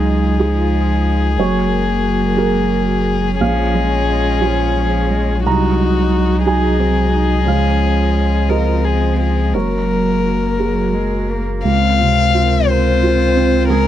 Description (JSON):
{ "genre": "neoclassical piano and strings", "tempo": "59 BPM (dotted quarters)", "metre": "6/8", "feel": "rubato", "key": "unclear", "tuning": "A4 = 439 Hz", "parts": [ { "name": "warm violin", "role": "melody", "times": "0.0-13.9 s", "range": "Gb4 to F5", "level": "-20 LUFS", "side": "left 7 dB", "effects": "none" }, { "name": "warm cello", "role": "second line", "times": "0.0-13.9 s", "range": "F3 to Ab4", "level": "-22 LUFS", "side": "right 4 dB", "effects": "none" }, { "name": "dark viola", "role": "accompaniment", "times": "0.0-13.9 s", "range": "Bb3 to Eb4", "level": "-23 LUFS", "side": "right 2 dB", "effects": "none" }, { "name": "felt-muted upright piano", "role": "accompaniment", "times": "0.0-13.9 s", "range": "Bb1 to Bb5", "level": "-20 LUFS", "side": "right 6 dB", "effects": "none" }, { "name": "warm studio string section", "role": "sustained chords", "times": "0.0-13.9 s", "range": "Ab3 to Eb5", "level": "-27 LUFS", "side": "left 3 dB", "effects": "none" }, { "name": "warm sub bass", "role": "bass", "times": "0.0-13.9 s", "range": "Gb1 to Db2", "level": "-18 LUFS", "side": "left 1 dB", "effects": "none" } ], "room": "little or no reverb", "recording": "dry, close 1970s-style studio recording", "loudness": "-13 LUFS", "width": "side -11 dB against mid", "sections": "0.0-11.6 A section; 11.6-13.9 B section", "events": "none", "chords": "0.0 Dbadd9; 1.4 Gbadd9; 3.4 Bbm7; 5.5 Ab7/C; 7.5 Dbadd9; 9.5 Gbadd9; 11.6 Bbsus2/Db" }